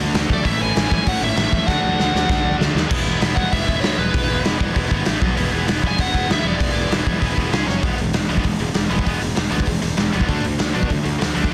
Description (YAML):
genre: punk rock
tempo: 195 BPM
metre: 4/4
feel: straight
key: E mixolydian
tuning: A4 = 441 Hz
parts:
  - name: tight distorted guitar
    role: riff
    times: 0.0-11.5 s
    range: A2 to C#5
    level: -25 LUFS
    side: equal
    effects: distortion
  - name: fuzz picked electric bass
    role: bass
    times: 0.0-11.5 s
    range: E1 to B2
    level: -27 LUFS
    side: equal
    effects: overdrive
  - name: raw garage drum kit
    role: drums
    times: 0.1-11.5 s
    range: crash cymbal, hi-hat, kick drum, snare drum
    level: -23 LUFS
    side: equal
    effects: none
  - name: bluesy overdriven lead guitar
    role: melody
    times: 0.3-6.9 s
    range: B4 to G#5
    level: -25 LUFS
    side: equal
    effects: distortion
room: little or no reverb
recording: dense, heavily limited modern master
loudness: -19 LUFS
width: mono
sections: 0.0-2.9 A section; 2.9-7.8 B section; 7.8-11.5 C section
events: drum fill 1.7-2.9, 7.7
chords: 0.5 A; 1.7 D; 2.9 E; 5.1 A5; 5.2 B5; 5.4 E; 7.5 C#5; 7.7 F#5; 7.8 E; 10.3 D5